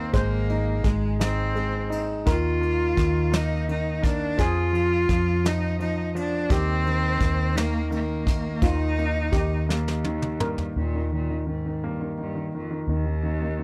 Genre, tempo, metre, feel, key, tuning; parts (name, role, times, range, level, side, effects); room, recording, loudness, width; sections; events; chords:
six-eight pop ballad; 57 BPM (dotted quarters); 6/8; straight; Eb major; A4 = 440 Hz
clear cello; melody; 0.0-13.6 s; Eb2 to F4; -30 LUFS; equal
steel pan; second line; 0.0-10.7 s; F4 to C5; -34 LUFS; equal
clear concert grand piano; accompaniment; 0.0-13.6 s; Eb3 to Eb4; -32 LUFS; equal
vintage muted fingered electric bass; bass; 0.0-13.6 s; Ab1 to F2; -29 LUFS; equal
soft brush drum kit; drums; 0.1-10.7 s; kick drum, ride cymbal, snare drum, toms; -28 LUFS; equal
studio ambience; dry, close 1970s-style studio recording; -25 LUFS; mono
0.0-10.8 A section; 10.8-13.6 B section
drum fill 9.7-10.8
0.1 Abadd9; 2.3 Eb5; 4.4 Fm7; 6.5 Eb; 8.6 Eb5